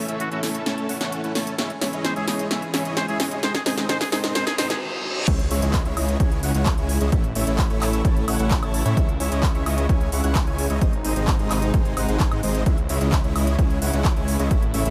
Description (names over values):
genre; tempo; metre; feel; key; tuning
EDM, festival progressive house; 130 BPM; 4/4; straight; C# harmonic minor; A4 = 440 Hz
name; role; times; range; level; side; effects
warm studio string section; sustained chords; 0.0-14.9 s; B#2 to A4; -34 LUFS; equal; sidechain pumping
dense compressed supersaw; riff; 0.0-14.9 s; G#3 to A5; -29 LUFS; equal; sidechain pumping, low-pass filter, dub echo
riser, reverse cymbal and impact; sound effects; 3.0-7.1 s; none; -35 LUFS; equal; none
big-room dance drum kit; drums; 0.1-14.9 s; crash cymbal, handclaps, hi-hat, snare drum, woodblock; -30 LUFS; equal; none
trumpet with straight mute; melody; 0.2-4.8 s; F#4 to B#4; -34 LUFS; equal; dub echo
detuned saw bass; bass; 5.3-14.9 s; G#1 to A2; -27 LUFS; equal; tube saturation, sidechain pumping
electronic kick drum; drums; 5.3-14.6 s; none; -23 LUFS; equal; none
room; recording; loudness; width
light reverb, digital ambience; none; -22 LUFS; mono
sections
0.0-5.3 A section; 5.3-14.9 B section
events
build-up 0.0-5.3; drum fill 0.0-4.8; reverse cymbal 4.4-5.3; stop 4.8-5.3; drop 5.3-14.9; impact 5.3-7.1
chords
0.0 A; 1.6 C#m; 3.4 G#; 5.3 C#m; 7.1 A; 9.0 C#m; 10.8 G#; 12.7 C#m